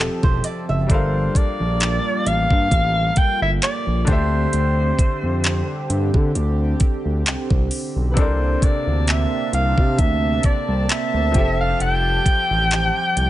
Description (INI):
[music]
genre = contemporary R&B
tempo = 66 BPM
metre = 4/4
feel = swing 54% on 16ths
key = G dorian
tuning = A4 = 440 Hz
[part]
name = bright grand piano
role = accompaniment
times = 0.0-13.3 s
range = C3 to F5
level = -29 LUFS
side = left 4 dB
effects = none
[part]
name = chorused pulse-width pad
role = sustained chords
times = 0.0-13.3 s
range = C3 to A5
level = -27 LUFS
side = right 2 dB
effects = none
[part]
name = flamenco guitar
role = arpeggios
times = 0.0-1.1 s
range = A4 to E5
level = -28 LUFS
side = right 4 dB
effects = none
[part]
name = smooth gliding synth bass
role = bass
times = 0.0-13.3 s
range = E1 to D3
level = -21 LUFS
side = equal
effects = none
[part]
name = smooth R&B drum kit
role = drums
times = 0.0-13.3 s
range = handclaps, hi-hat, kick drum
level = -19 LUFS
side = equal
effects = none
[part]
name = dark soprano saxophone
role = melody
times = 0.9-13.3 s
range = B4 to G5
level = -22 LUFS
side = equal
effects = none
[sound]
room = studio reverb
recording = nothing above 10.6 kHz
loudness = -17 LUFS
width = side -14 dB against mid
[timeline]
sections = 0.0-13.3 A section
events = none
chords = 0.0 Fmaj9; 0.9 Gm9; 4.1 D7sus4; 8.2 Csus2; 11.3 Fmaj9